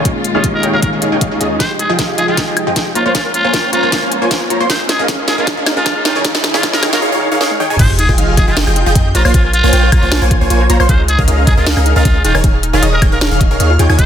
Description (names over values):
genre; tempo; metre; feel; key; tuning
future bass; 155 BPM; 4/4; half-time; unclear; A4 = 443 Hz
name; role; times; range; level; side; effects
bell-like tine electric piano; accompaniment; 0.0-1.6 s; Ab3 to G4; -20 LUFS; left 3 dB; sidechain pumping, ping-pong delay
warm studio string section; sustained chords; 0.0-7.0 s; Db3 to Ab4; -26 LUFS; right 1 dB; none
supersaw stab; riff; 0.0-14.1 s; Eb3 to C6; -16 LUFS; equal; sidechain pumping, low-pass filter
long sustained 808-style bass; bass; 0.0-14.1 s; Eb1 to F2; -16 LUFS; equal; sidechain pumping
electronic kick drum; drums; 0.1-14.1 s; none; -14 LUFS; equal; overdrive
trap drum kit; drums; 0.1-14.1 s; crash cymbal, hi-hat, snare drum, toms, woodblock; -18 LUFS; equal; none
trumpet with metal mute; melody; 0.3-14.1 s; F4 to C5; -19 LUFS; equal; sidechain pumping, ping-pong delay
wide unison pluck; arpeggios; 1.6-14.0 s; Eb4 to Eb5; -25 LUFS; left 2 dB; sidechain pumping, ping-pong delay
riser and sub drop; sound effects; 2.9-9.3 s; none; -23 LUFS; equal; none
airy dreamy lead; arpeggios; 7.8-14.1 s; Eb6 to C7; -25 LUFS; left 1 dB; chorus, sidechain pumping
room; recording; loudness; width
light reverb; dense, heavily limited modern master, high-pass filter; -10 LUFS; side -9 dB against mid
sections
0.0-7.8 A section; 7.8-14.1 B section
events
build-up 0.0-7.8; filter sweep on supersaw synth 0.0-7.8; filter sweep 0.0-7.8; drum fill 1.6-7.0, 7.4-7.8; drop 7.8-14.1; impact 7.8-9.3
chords
0.0 Eb9sus4; 1.6 Fm9; 3.0 Bbm9; 4.7 Db69; 6.1 Eb9sus4; 7.8 Fm9; 9.1 Bbm9; 10.9 Db69; 12.2 Eb9sus4